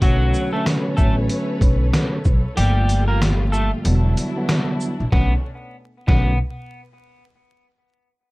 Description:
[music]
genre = hip hop, boom-bap hip-hop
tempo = 94 BPM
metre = 4/4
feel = swing 61% on 16ths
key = B minor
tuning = A4 = 440 Hz
[part]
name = electric guitar at the edge of break-up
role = melody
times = 0.0-6.4 s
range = F#3 to Bb4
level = -26 LUFS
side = equal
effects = high-pass filter, low-pass filter, analog delay
[part]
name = mellow tine electric piano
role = accompaniment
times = 0.0-6.3 s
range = E2 to C#4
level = -25 LUFS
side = right 1 dB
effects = fast stereo tremolo, cassette tape, high-pass filter, low-pass filter
[part]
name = warm studio string section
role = sustained chords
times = 0.0-5.4 s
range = B2 to C#5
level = -31 LUFS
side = left 1 dB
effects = high-pass filter, low-pass filter
[part]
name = upright bass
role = bass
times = 0.0-6.4 s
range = E1 to B1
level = -19 LUFS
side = equal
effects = none
[part]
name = trip hop sampler-style drum kit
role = drums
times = 0.0-6.3 s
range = hi-hat, kick drum, shaker, snare drum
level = -19 LUFS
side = equal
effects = vintage 12-bit sampler grit
[sound]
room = little or no reverb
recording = dark, warm production, vinyl crackle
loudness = -17 LUFS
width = side -22 dB against mid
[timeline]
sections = 0.0-5.1 A section; 5.1-7.7 B section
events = kick muted 2.6-5.1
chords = 0.0 Bm9; 2.6 Gm9; 3.8 Em9; 5.1 Bm9

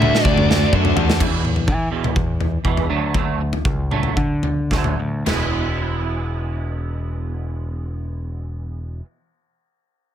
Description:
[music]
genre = quiet-loud alternative rock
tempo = 106-127 BPM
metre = 4/4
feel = straight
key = E mixolydian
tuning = A4 = 437 Hz
[part]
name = high-gain lead guitar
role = melody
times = 0.0-0.7 s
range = E5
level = -22 LUFS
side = right 1 dB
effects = distortion, slapback echo
[part]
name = soft string machine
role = sustained chords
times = 0.0-1.2 s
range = E4 to F#5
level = -34 LUFS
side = left 1 dB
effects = none
[part]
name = crunchy overdriven guitar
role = riff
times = 0.0-1.2 s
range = D3 to F#4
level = -22 LUFS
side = right 14 dB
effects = none
[part]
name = thick fuzz guitar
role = riff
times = 0.0-1.2 s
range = D3 to F#4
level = -22 LUFS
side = left 15 dB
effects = distortion
[part]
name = growling picked electric bass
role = bass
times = 0.0-9.0 s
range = E1 to E3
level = -22 LUFS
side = equal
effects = overdrive
[part]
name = big rock drum kit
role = drums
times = 0.0-5.4 s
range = crash cymbal, kick drum, snare drum, toms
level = -21 LUFS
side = left 1 dB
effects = none
[part]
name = twangy electric guitar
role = arpeggios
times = 1.2-9.1 s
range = E2 to E4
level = -27 LUFS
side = right 8 dB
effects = ensemble chorus
[sound]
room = small room reverb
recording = none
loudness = -18 LUFS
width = side -10 dB against mid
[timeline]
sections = 0.0-1.2 A section; 1.2-5.3 B section; 5.3-9.8 C section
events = drum fill 0.0-1.2; slowing down 1.2-5.3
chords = 0.0 Dadd9; 1.2 E5; 2.9 D; 5.3 E

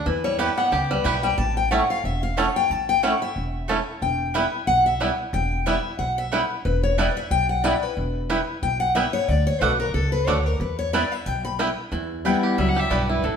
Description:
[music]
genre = bluegrass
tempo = 182 BPM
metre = 4/4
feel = swing 56% on 8ths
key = E dorian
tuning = A4 = 440 Hz
[part]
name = bluegrass banjo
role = melody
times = 0.0-13.4 s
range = E3 to G4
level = -27 LUFS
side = right 2 dB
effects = none
[part]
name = picked steel-string acoustic guitar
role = accompaniment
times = 0.1-13.4 s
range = E2 to B5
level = -24 LUFS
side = left 3 dB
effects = none
[part]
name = upright bass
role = bass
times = 0.1-13.4 s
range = E1 to E2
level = -26 LUFS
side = equal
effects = none
[part]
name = mandolin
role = stabs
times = 0.4-13.0 s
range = A3 to A5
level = -28 LUFS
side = right 4 dB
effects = none
[part]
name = rich fiddle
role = melody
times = 12.6-13.4 s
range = A4 to F#5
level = -26 LUFS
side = left 2 dB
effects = none
[sound]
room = wet stone room reverb, RT60 1.2 s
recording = band playing live in one room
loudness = -20 LUFS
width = side -7 dB against mid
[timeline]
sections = 0.0-1.4 A section; 1.4-11.9 A section; 11.9-13.4 B section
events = steel-string acoustic guitar solo 0.0-11.9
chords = 0.1 Em; 1.4 A; 4.0 Em; 9.3 D; 10.6 Em

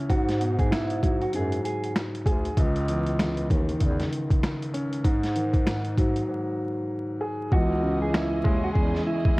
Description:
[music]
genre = hip hop, boom-bap hip-hop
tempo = 97 BPM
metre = 4/4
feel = swing 60% on 16ths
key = C# minor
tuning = A4 = 442 Hz
[part]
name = dark grand piano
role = accompaniment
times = 0.0-9.4 s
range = C#2 to G#4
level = -28 LUFS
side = equal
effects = high-pass filter, low-pass filter, cassette tape
[part]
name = mellow electric guitar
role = melody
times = 0.1-1.9, 7.5-9.4 s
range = E4 to G#4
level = -30 LUFS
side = right 1 dB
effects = high-pass filter, low-pass filter, cassette tape, tape echo
[part]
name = mellow bass clarinet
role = bass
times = 0.1-9.0 s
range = C#2 to G#2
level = -28 LUFS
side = equal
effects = none
[part]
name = boom bap sampler-style drum kit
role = drums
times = 0.1-9.4 s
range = hi-hat, kick drum, snare drum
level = -24 LUFS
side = equal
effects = cassette tape
[part]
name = warm studio string section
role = sustained chords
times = 7.5-9.4 s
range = G#3 to D#5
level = -36 LUFS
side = right 1 dB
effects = high-pass filter, low-pass filter, cassette tape
[sound]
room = studio reverb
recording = home recording on cassette, vinyl crackle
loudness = -23 LUFS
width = side -22 dB against mid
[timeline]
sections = 0.0-7.5 A section; 7.5-9.4 B section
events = break 6.3-7.5; hi-hats muted 7.5-9.4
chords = 0.1 G#m7; 2.6 C#madd9; 5.0 G#5; 7.5 C#madd9

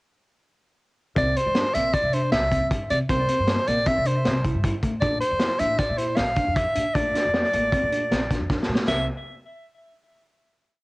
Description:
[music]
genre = progressive instrumental, band music in an uneven meter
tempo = 156 BPM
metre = 5/4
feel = straight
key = C mixolydian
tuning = A4 = 440 Hz
[part]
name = bright soprano saxophone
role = melody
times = 1.2-9.1 s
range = C5 to F5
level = -24 LUFS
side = equal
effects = cassette tape, analog delay
[part]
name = warm grand piano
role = accompaniment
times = 1.2-9.1 s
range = Bb2 to E5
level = -36 LUFS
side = left 4 dB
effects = cassette tape
[part]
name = bell-like tine electric piano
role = arpeggios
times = 1.2-9.1 s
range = A3 to E4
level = -30 LUFS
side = equal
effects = medium stereo tremolo, cassette tape
[part]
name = upright bass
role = bass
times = 1.2-9.1 s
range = A1 to C3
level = -29 LUFS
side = equal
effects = none
[part]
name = vintage drum kit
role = drums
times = 1.2-9.0 s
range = crash cymbal, hi-hat, kick drum, snare drum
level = -26 LUFS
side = equal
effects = none
[sound]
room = light reverb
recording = home recording on cassette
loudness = -20 LUFS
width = side -23 dB against mid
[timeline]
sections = 1.2-8.9 A section; 8.9-10.8 final chord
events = drum fill 8.5-8.9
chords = 1.2 C7; 5.0 Bbmaj7; 8.9 C7

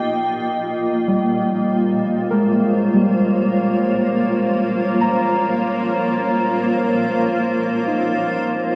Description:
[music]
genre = ambient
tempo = free time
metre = none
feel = none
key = Bb dorian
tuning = A4 = 439 Hz
[part]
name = granular cloud pad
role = sustained chords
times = 0.0-8.8 s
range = Bb3 to G5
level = -22 LUFS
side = equal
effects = built-in reverb, shimmer reverb
[part]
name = muted felt-like synth keys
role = arpeggios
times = 0.0-8.8 s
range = G3 to Bb5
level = -23 LUFS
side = equal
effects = chorus, tape echo, shimmer reverb
[part]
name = bowed-like drone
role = drone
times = 1.4-8.8 s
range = Bb3 to F4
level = -26 LUFS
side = equal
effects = built-in reverb
[sound]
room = wet huge ambient reverb, RT60 8.5 s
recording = worn, warbling old tape, cassette tape, warbly pitch drift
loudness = -19 LUFS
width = mono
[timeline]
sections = 0.2-8.8 A section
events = none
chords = 0.2 Bbm7

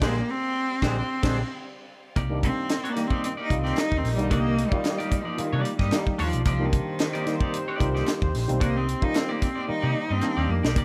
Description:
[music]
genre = funk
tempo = 112 BPM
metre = 4/4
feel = straight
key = C minor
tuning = A4 = 440 Hz
[part]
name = rich cello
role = melody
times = 0.0-10.8 s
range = Eb3 to Eb4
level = -31 LUFS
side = equal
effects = none
[part]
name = mellow horn section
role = second line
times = 0.0-10.5 s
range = C4 to Eb5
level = -37 LUFS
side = equal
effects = none
[part]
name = semi-hollow electric guitar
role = accompaniment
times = 0.0-10.8 s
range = Ab3 to Eb5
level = -35 LUFS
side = equal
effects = tremolo
[part]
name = phased string machine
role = sustained chords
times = 0.0-2.1 s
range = G4 to F5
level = -48 LUFS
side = equal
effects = ensemble chorus, phaser
[part]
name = mellow clav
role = stabs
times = 0.0-10.7 s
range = D3 to F4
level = -34 LUFS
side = equal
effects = auto-wah
[part]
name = hollow-body short-scale picked electric bass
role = bass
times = 0.0-10.8 s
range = Bb1 to C3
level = -29 LUFS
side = equal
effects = tube saturation
[part]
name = tight funk drum kit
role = drums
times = 0.0-10.8 s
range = crash cymbal, hi-hat, kick drum, snare drum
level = -29 LUFS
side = equal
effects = none
[part]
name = group handclap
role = percussion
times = 2.7-10.4 s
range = none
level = -44 LUFS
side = equal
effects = none
[sound]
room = light reverb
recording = none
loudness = -25 LUFS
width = mono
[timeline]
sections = 0.0-2.2 A section; 2.2-10.8 B section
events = band accent 0.0-2.2; cello solo 2.2-10.8; drum fill 9.7-10.8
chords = 0.0 Bb13; 2.2 Cm9

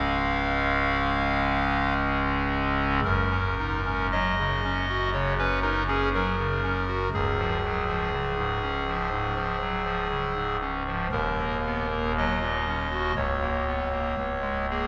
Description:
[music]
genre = classical, chorale-style piece for pipe organ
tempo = 56-61 BPM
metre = 4/4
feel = rubato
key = F# major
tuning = A4 = 441 Hz
[part]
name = chamber organ, clarinet reed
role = solo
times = 0.0-14.9 s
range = C#1 to E#5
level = -26 LUFS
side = equal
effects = none
[sound]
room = wet cathedral reverb, RT60 4.9 s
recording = recorded in a church or concert hall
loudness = -26 LUFS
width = mono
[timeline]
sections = 0.0-3.0 A section; 3.0-14.9 B section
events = none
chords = 0.0 C#; 3.0 F#; 7.1 C#; 11.1 D#m; 13.2 A#m/C#; 14.2 C#5

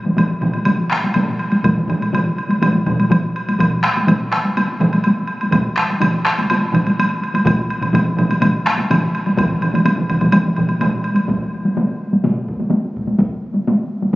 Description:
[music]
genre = japanese traditional, taiko drum ensemble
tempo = 125 BPM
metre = 4/4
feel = straight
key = none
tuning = none
[part]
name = taiko ensemble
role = percussion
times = 0.0-12.4 s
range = none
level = -23 LUFS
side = left 1 dB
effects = none
[part]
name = taiko ensemble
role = percussion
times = 0.1-14.2 s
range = none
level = -18 LUFS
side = equal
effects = none
[part]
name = taiko ensemble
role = percussion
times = 0.1-10.9, 14.1-14.2 s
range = none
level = -20 LUFS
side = right 1 dB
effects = none
[part]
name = woodblock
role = percussion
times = 0.2-11.3 s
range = none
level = -24 LUFS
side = right 1 dB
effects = none
[part]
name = solo taiko drums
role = percussion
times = 1.6-13.3 s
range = none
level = -29 LUFS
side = equal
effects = none
[sound]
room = wet huge ambient reverb, RT60 4.2 s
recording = recorded on a phone in the room, studio reverb, compression, nothing above 7.5 kHz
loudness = -15 LUFS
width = side -18 dB against mid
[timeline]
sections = 0.0-11.3 A section; 11.3-14.2 B section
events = speeding up 0.0-14.2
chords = none

